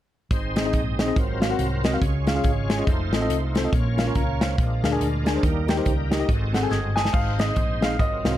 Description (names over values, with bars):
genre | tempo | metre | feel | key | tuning
uptempo gospel | 141 BPM | 4/4 | swing 60% on 8ths | Ab major | A4 = 440 Hz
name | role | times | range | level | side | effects
tine electric piano | accompaniment | 0.3-8.4 s | Ab2 to Ab6 | -26 LUFS | left 1 dB | medium stereo tremolo
bright tonewheel organ | sustained chords | 0.3-8.4 s | Gb3 to G5 | -31 LUFS | right 2 dB | slow rotary speaker, overdrive, chorus vibrato
hollow-body short-scale fingered electric bass | bass | 0.3-8.4 s | F1 to Eb2 | -27 LUFS | equal | none
natural country drum kit | drums | 0.3-8.3 s | crash cymbal, hi-hat, kick drum, snare drum | -24 LUFS | equal | none
warm baby grand piano | melody | 7.0-8.4 s | Eb5 to Ab5 | -27 LUFS | equal | slapback echo
room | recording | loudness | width
light reverb, studio reverb | none | -20 LUFS | side -12 dB against mid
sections
0.3-7.1 A section; 7.1-8.4 B section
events
drum fill 6.7-7.1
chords
0.3 Ab; 1.2 Ab13; 2.0 Db; 2.9 F7; 3.7 Bbm; 4.6 Bb7; 5.4 Eb; 6.3 Ab7b9; 7.1 Ab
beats
| 0.31 0.74 1.17 1.59 | 2.02 2.45 2.87 3.30 | 3.73 4.15 4.58 5.01 | 5.43 5.86 6.29 6.71 | 7.14 7.57 7.99